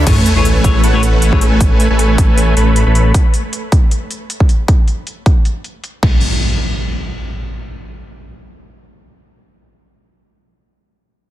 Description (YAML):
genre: future bass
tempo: 156 BPM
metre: 4/4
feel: swing 55% on 16ths, half-time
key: A major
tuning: A4 = 440 Hz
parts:
  - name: dense compressed supersaw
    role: riff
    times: 0.0-3.1 s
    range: A3 to B5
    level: -17 LUFS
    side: equal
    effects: sidechain pumping, low-pass filter, ping-pong delay
  - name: wide detuned saw bass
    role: bass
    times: 0.0-3.1 s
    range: A1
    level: -13 LUFS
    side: equal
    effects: chorus, sidechain pumping
  - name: clean electric guitar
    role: accompaniment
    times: 0.1-1.4 s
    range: A3 to C#5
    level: -23 LUFS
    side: left 6 dB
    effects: phaser, sidechain pumping, ping-pong delay
  - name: big-room dance drum kit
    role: drums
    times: 0.1-6.1 s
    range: crash cymbal, hi-hat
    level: -24 LUFS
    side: left 1 dB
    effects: low-pass filter on hats, low-pass filter on snare, low-pass filter on cymbals, low-pass filter on room
  - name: electronic kick drum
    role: drums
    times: 0.1-6.1 s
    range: none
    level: -12 LUFS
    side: equal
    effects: none
  - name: sub drop and impact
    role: sound effects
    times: 0.1-1.6, 6.0-10.3 s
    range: none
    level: -19 LUFS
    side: equal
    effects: none
room: digital ambience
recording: dense, heavily limited modern master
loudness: -11 LUFS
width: side -14 dB against mid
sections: 0.1-6.2 A section; 6.2-9.3 B section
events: impact 0.1-1.6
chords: 0.1 Amaj7; 3.1 N.C.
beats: | 0.07 0.45 0.84 1.22 | 1.60 1.99 2.37 2.76 | 3.14 3.53 3.91 4.30 | 4.68 5.07 5.45 5.84 | 6.22 6.61 6.99 7.37 | 7.76 8.14 8.53 8.91